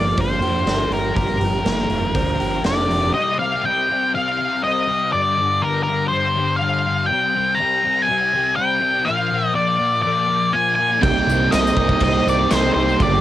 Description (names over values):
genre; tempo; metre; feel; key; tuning
rock, shoegaze and dream pop; 122 BPM; 4/4; straight; C minor; A4 = 440 Hz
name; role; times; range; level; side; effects
octave-fuzz lead guitar; melody; 0.0-13.2 s; Bb4 to Bb5; -19 LUFS; equal; distortion, cassette tape, analog delay
mellow electric guitar; arpeggios; 0.0-3.1, 11.0-13.2 s; G4 to C5; -30 LUFS; right 6 dB; analog chorus, cassette tape, analog delay
mellow electric guitar; riff; 0.0-3.1, 11.0-13.2 s; G2 to G4; -23 LUFS; right 6 dB; reverse reverb, cassette tape
thick fuzz guitar; riff; 0.0-13.2 s; G2 to G4; -24 LUFS; left 6 dB; distortion, ensemble chorus, cassette tape
growling fingered electric bass; bass; 0.0-3.1, 11.0-13.2 s; F1 to F2; -24 LUFS; equal; overdrive
big rock drum kit; drums; 0.2-3.0, 11.0-13.1 s; crash cymbal, hi-hat, kick drum, snare drum; -24 LUFS; equal; cassette tape
string machine, full ensemble; sustained chords; 11.0-13.2 s; Bb4 to Eb6; -31 LUFS; equal; none
biting overdriven guitar; riff; 11.0-13.2 s; G2 to G4; -26 LUFS; equal; cassette tape
tambourine; percussion; 11.0-13.1 s; none; -38 LUFS; left 8 dB; none
room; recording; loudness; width
little or no reverb; home recording on cassette; -16 LUFS; side -13 dB against mid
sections
0.0-3.1 A section; 3.1-13.2 B section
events
none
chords
0.0 Gm7; 3.1 Cm; 5.1 G5; 7.1 C5; 9.1 Bb; 11.0 Cm7